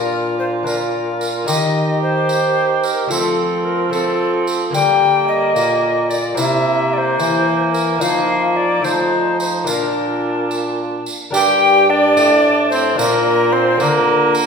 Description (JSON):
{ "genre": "classical, renaissance-style consort dance", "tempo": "73 BPM (dotted quarters)", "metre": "6/8", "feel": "straight", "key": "Bb major", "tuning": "A4 = 440 Hz", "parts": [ { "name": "alto recorder", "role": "melody", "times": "0.0-14.3 s", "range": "A4 to G5", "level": "-17 LUFS", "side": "left 3 dB", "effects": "none" }, { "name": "mellow cor anglais", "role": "second line", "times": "0.0-14.5 s", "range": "Bb3 to G4", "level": "-20 LUFS", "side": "right 4 dB", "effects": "none" }, { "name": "lute", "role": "accompaniment", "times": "0.0-14.5 s", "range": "G2 to Bb4", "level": "-23 LUFS", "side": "left 3 dB", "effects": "none" }, { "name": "warm bassoon", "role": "bass", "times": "0.0-14.5 s", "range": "G2 to G3", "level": "-21 LUFS", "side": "right 1 dB", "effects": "none" }, { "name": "tambourine", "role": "percussion", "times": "0.7-14.5 s", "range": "none", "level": "-28 LUFS", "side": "right 3 dB", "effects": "none" } ], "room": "wet recital hall reverb, RT60 1.7 s", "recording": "recorded in a church or concert hall", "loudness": "-14 LUFS", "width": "side -6 dB against mid", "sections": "0.0-11.3 A section; 11.3-14.5 A section", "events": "none", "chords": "0.0 Bb; 1.5 Eb; 3.1 F; 4.7 Gm; 6.4 C7; 8.0 F7sus4; 8.8 F7; 9.7 Bb; 11.3 Gm; 13.0 Bb" }